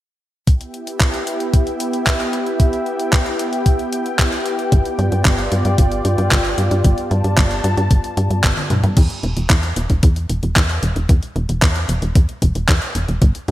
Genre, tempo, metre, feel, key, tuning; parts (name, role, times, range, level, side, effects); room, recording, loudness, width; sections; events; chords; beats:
italo disco; 113 BPM; 4/4; straight; E minor; A4 = 440 Hz
warm analog pad; sustained chords; 0.7-8.9 s; B3 to A5; -21 LUFS; equal; chorus
clean 12-bit digital drum machine; drums; 0.5-13.5 s; crash cymbal, handclaps, hi-hat, toms; -22 LUFS; equal; gated reverb
electronic kick drum; drums; 0.5-13.3 s; -14 LUFS; equal
tight sequencer bass; bass; 4.7-13.5 s; E1 to G2; -18 LUFS; equal
moderate lush hall reverb, RT60 1.9 s; bright 1980s-style digital production; -15 LUFS; side -14 dB against mid
0.5-9.0 A section; 9.0-13.5 B section
drum fill 8.4-9.0
0.5 Em; 4.7 G7; 9.0 N.C.
| 0.47 1.00 1.54 2.07 | 2.60 3.13 3.66 4.19 | 4.72 5.25 5.78 6.32 | 6.85 7.38 7.91 8.44 | 8.97 9.50 10.03 10.56 | 11.09 11.62 12.16 12.69 | 13.22